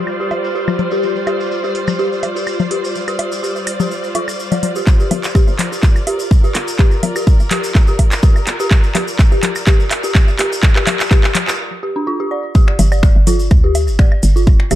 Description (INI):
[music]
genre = minimal techno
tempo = 125 BPM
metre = 4/4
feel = swing 53% on 16ths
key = G minor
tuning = A4 = 440 Hz
[part]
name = clear studio string section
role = texture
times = 0.0-11.6 s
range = G3 to D5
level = -23 LUFS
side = right 1 dB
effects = sidechain pumping
[part]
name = maracas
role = percussion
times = 0.1-14.8 s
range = none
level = -31 LUFS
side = left 2 dB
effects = none
[part]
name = woodblock and congas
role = percussion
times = 0.1-14.8 s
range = none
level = -22 LUFS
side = left 4 dB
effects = digital delay
[part]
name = dark detuned synth bell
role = riff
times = 0.2-14.8 s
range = D4 to D5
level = -21 LUFS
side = left 1 dB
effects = chorus, phaser, sidechain pumping, low-pass filter, digital delay
[part]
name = house drum kit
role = drums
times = 0.3-14.8 s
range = finger snaps, handclaps, hi-hat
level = -20 LUFS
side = right 1 dB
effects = none
[part]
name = electronic kick drum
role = drums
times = 4.9-14.6 s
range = none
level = -10 LUFS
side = equal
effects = none
[part]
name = hollow knocking FM bass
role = bass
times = 5.1-14.8 s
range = G1 to D2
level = -16 LUFS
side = equal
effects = sidechain pumping, high-pass filter
[sound]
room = light reverb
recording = dark, warm production, low-pass filter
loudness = -12 LUFS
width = side -14 dB against mid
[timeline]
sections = 0.0-4.9 A section; 4.9-12.6 B section; 12.6-14.8 C section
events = filter sweep 0.0-4.9; build-up 4.9-12.6; drum fill 4.9-11.6; break 11.6-12.6; drop 12.6-14.8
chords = 0.0 G7(no3); 4.9 Gm7